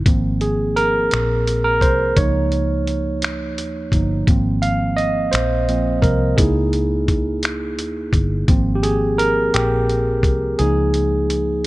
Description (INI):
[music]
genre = slow six-eight R&B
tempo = 57 BPM (dotted quarters)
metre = 6/8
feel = straight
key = Ab major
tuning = A4 = 440 Hz
[part]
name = barky tine electric piano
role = accompaniment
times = 0.0-11.7 s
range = F3 to F5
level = -19 LUFS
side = right 1 dB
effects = none
[part]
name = vintage muted fingered electric bass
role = bass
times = 0.0-11.7 s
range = G1 to Eb2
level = -21 LUFS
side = equal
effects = none
[part]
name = dusty soul sampler-style drum kit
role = drums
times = 0.1-11.7 s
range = finger snaps, hi-hat, kick drum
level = -20 LUFS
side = equal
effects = none
[sound]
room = light reverb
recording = dark, warm production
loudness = -16 LUFS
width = side -18 dB against mid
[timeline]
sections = 0.0-11.7 A section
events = tine electric piano solo 0.0-11.7; kick muted 10.6-11.7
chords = 0.1 Ab69; 2.2 Db69; 4.3 Ab69; 6.4 Dbm6; 8.5 Ab69; 10.6 Db69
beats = | 0.06 1.11 | 2.17 3.22 | 4.27 5.32 | 6.38 7.43 | 8.48 9.53 | 10.59 11.64